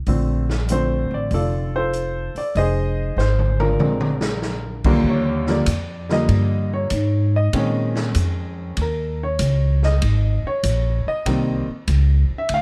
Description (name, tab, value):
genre	jazz piano trio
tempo	96 BPM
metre	4/4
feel	swing 69% on 8ths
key	Bb major, Eb major from 5.0 s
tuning	A4 = 439 Hz
part	upright bass	bass	0.0-12.6 s	F1 to Bb2	-23 LUFS	equal	none
part	clear concert grand piano	melody	0.1-12.6 s	Eb2 to F5	-25 LUFS	equal	none
part	swinging big-band drum kit	drums	0.1-12.6 s	crash cymbal, hi-hat, kick drum, ride cymbal, snare drum, toms	-28 LUFS	equal	none
room	light reverb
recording	dark, warm production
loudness	-20 LUFS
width	mono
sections	0.0-5.0 A section; 5.0-12.6 B section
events	drum fill 3.2-4.4; grand piano solo 5.0-12.6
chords	0.1 Bbmaj7; 2.6 Fm7; 3.8 Bb9; 5.0 Ebmaj9; 7.5 Bbm11; 8.8 Bbmadd11; 10.0 Abadd9